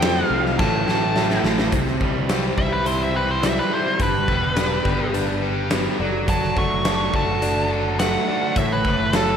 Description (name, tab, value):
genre	classic rock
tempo	105 BPM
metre	4/4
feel	straight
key	unclear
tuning	A4 = 440 Hz
part	nasal lead guitar with a parked wah	melody	0.0-9.4 s	A4 to C#6	-24 LUFS	equal	overdrive
part	bright reed electric piano	accompaniment	0.0-9.4 s	D4 to E5	-30 LUFS	left 5 dB	fast tremolo
part	cranked stack guitar	riff	0.0-1.7 s	F2 to A3	-28 LUFS	equal	overdrive, slapback echo
part	crunchy overdriven guitar	riff	0.0-9.4 s	F2 to G4	-28 LUFS	left 9 dB	spring reverb, slapback echo
part	overdriven electric guitar	riff	0.0-9.4 s	F2 to A4	-26 LUFS	right 8 dB	none
part	picked electric bass	bass	0.0-9.4 s	E1 to F2	-27 LUFS	equal	none
part	big rock drum kit	drums	0.0-9.3 s	hi-hat, kick drum, ride cymbal, snare drum	-23 LUFS	equal	none
room	moderate lush hall reverb, RT60 2.2 s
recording	big arena sound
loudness	-18 LUFS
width	side -8 dB against mid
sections	0.0-1.7 A section; 1.7-9.4 B section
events	drum fill 0.6-1.7; lead electric guitar solo 1.7-9.4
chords	0.0 F; 0.6 A; 1.7 C; 4.0 G; 6.0 D/F#; 8.6 A